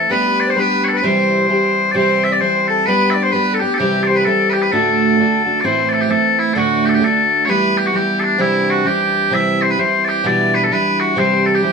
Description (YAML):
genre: celtic folk, Celtic polka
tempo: 130 BPM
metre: 2/4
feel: swing 61% on 8ths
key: unclear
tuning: A4 = 439 Hz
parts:
  - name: loud bright bagpipes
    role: melody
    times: 0.0-11.7 s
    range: D4 to E5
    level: -16 LUFS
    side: left 2 dB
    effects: none
  - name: fingerpicked twelve-string acoustic guitar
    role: accompaniment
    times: 0.0-11.7 s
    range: D2 to G4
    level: -17 LUFS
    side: right 2 dB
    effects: none
  - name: accordion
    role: second line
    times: 0.1-5.4 s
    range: G4 to D5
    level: -21 LUFS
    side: left 3 dB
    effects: none
room: moderate studio reverb, RT60 0.7 s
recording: minimal, uncompressed stereo recording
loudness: -13 LUFS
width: side -5 dB against mid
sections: 0.0-5.6 A section; 5.6-11.7 B section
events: none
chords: 0.1 G; 1.0 C; 2.9 G; 3.8 C; 4.7 D; 5.6 Am; 6.6 D; 7.5 Em; 8.4 Cadd9; 9.3 C; 10.2 G6/B; 11.2 C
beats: | 0.11 0.57 | 1.03 1.49 | 1.95 2.41 | 2.87 3.33 | 3.79 4.25 | 4.72 5.18 | 5.64 6.10 | 6.56 7.02 | 7.48 7.94 | 8.40 8.86 | 9.32 9.78 | 10.24 10.71 | 11.17 11.63